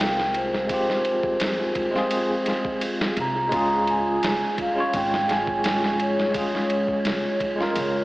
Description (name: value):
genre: trip hop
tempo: 85 BPM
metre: 4/4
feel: straight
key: unclear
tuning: A4 = 440 Hz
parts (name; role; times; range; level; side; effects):
- vibraphone with soft mallets; melody; 0.0-8.0 s; C5 to Bb5; -25 LUFS; equal; vintage 12-bit sampler grit, tape echo
- bell-like tine electric piano; accompaniment; 0.0-8.0 s; Ab3 to Db5; -27 LUFS; equal; tremolo, tape echo
- deep dark ambient pad; sustained chords; 0.3-8.0 s; Ab3 to Db5; -30 LUFS; equal; chorus, built-in reverb
- upright bass; bass; 0.0-8.0 s; Ab1 to F2; -35 LUFS; equal; none
- boom bap sampler-style drum kit; drums; 0.0-7.9 s; kick drum, ride cymbal, snare drum; -28 LUFS; equal; studio reverb
- wind-like tuned noise texture; texture; 0.0-8.0 s; Ab4; -35 LUFS; equal; built-in reverb
room: wet lush hall reverb, RT60 2.7 s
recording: dreamy mix soaked in reverb, AM radio sound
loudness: -21 LUFS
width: side -19 dB against mid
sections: 0.0-8.0 A section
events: none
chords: 0.0 Fmadd9; 3.5 Db